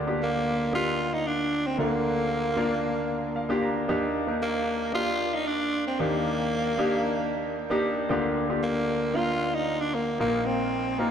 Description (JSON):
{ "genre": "pop", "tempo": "114 BPM", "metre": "4/4", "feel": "straight", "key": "Eb major", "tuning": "A4 = 441 Hz", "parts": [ { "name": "clear concert grand piano", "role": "accompaniment", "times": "0.0-11.1 s", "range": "Bb1 to Bb5", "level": "-27 LUFS", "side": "left 1 dB", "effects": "tube saturation, lush chorus" }, { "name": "growling tenor saxophone", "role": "melody", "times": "0.2-11.1 s", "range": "Bb3 to F4", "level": "-27 LUFS", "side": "right 1 dB", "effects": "diffuse ambient delay" } ], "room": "wet plate reverb, RT60 2.7 s", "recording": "dreamy mix soaked in reverb", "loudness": "-24 LUFS", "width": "side -8 dB against mid", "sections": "0.0-11.1 A section", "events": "grand piano fill 3.1-3.9", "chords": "0.0 Gm7/D; 3.9 Ebmaj7; 8.1 Gm7/D; 10.2 Bbsus4" }